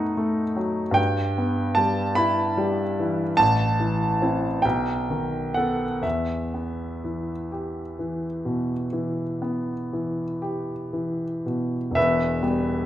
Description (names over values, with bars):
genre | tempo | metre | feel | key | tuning
classical, romantic nocturne for solo piano | 36-51 BPM (dotted quarters) | 12/8 | rubato | E minor | A4 = 441 Hz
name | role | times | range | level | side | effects
clear grand piano | solo | 0.0-12.9 s | E1 to B5 | -22 LUFS | equal | none
room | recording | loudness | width
moderate recital hall reverb, RT60 1.5 s | none | -22 LUFS | side -12 dB against mid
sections
0.0-12.0 A section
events
none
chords
0.0 B7/F#; 1.0 Em/G; 3.4 Am; 4.6 B7; 6.0 Em